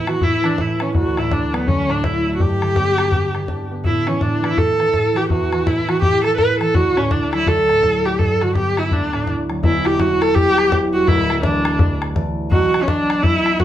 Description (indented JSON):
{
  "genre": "celtic folk, Celtic hornpipe",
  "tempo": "166 BPM",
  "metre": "4/4",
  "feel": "swing 61% on 8ths",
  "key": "D major",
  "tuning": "A4 = 440 Hz",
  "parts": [
    { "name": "dark viola", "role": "melody", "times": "0.0-13.6 s", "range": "B3 to B4", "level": "-18 LUFS", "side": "equal", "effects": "none" },
    { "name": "concert harp", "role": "accompaniment", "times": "0.0-13.6 s", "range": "D1 to E4", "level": "-21 LUFS", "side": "right 1 dB", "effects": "none" },
    { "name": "bodhran", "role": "percussion", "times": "0.1-13.6 s", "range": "none", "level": "-21 LUFS", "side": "left 1 dB", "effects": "none" }
  ],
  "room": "wet studio reverb, RT60 0.6 s",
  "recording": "band playing live in one room",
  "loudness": "-15 LUFS",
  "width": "side -12 dB against mid",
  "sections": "0.0-9.6 A section; 9.6-13.6 B section",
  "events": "none",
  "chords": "0.0 A5; 0.9 D; 2.4 G; 3.9 A5; 6.7 D; 8.2 G; 8.9 D; 9.6 Emadd9; 11.1 Dsus2; 12.5 Bm"
}